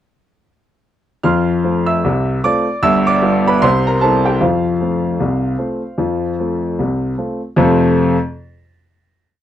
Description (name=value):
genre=ragtime piano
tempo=76 BPM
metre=2/4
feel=swing 59% on 16ths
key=F major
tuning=A4 = 437 Hz
part: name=clear grand piano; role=solo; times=1.2-8.2 s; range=G1 to F6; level=-13 LUFS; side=equal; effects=none
room=little or no reverb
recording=dry, close 1970s-style studio recording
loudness=-14 LUFS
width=side -11 dB against mid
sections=1.3-7.6 A section; 7.6-9.2 final chord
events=none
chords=1.3 F; 2.8 G7; 3.6 C; 4.4 F